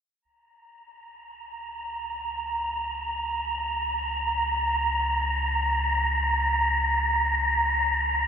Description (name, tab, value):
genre	ambient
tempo	free time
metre	none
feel	none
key	unclear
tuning	A4 = 440 Hz
part	round analog bass	bass	0.2-8.3 s	Db2	-31 LUFS	left 1 dB	none
part	wind-like tuned noise texture	texture	1.4-8.3 s	Bb5	-24 LUFS	right 1 dB	built-in reverb
room	wet cathedral reverb, RT60 6.2 s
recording	in a vast, echoing space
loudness	-23 LUFS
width	side -7 dB against mid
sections	0.2-8.3 A section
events	fade-in on analog synth bass 0.2-8.3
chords	0.2 Bbm/Db